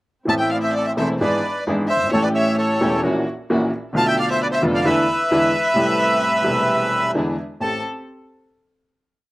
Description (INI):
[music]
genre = tango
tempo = 131 BPM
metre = 4/4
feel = rubato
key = A minor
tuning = A4 = 440 Hz
[part]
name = bandoneon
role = melody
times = 0.3-7.8 s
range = A4 to A5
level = -20 LUFS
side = right 1 dB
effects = slapback echo
[part]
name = warm violin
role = second line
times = 0.3-7.8 s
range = A4 to A5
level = -25 LUFS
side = left 3 dB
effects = slapback echo
[part]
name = clear upright piano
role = accompaniment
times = 0.3-7.8 s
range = E1 to A4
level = -21 LUFS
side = equal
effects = none
[part]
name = warm chamber string section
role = stabs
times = 0.3-7.8 s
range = G#3 to A4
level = -28 LUFS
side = right 1 dB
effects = slapback echo
[sound]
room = little or no reverb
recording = recorded outdoors, with no room sound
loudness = -17 LUFS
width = side -19 dB against mid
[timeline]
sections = 0.3-7.6 A section; 7.6-9.3 final chord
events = none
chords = 0.3 Am; 1.2 E7/G#; 2.1 A7; 3.0 F#7/A#; 4.0 Bm7b5; 4.9 E7sus4; 5.3 E7; 5.8 Am7; 7.2 E7; 7.6 Am7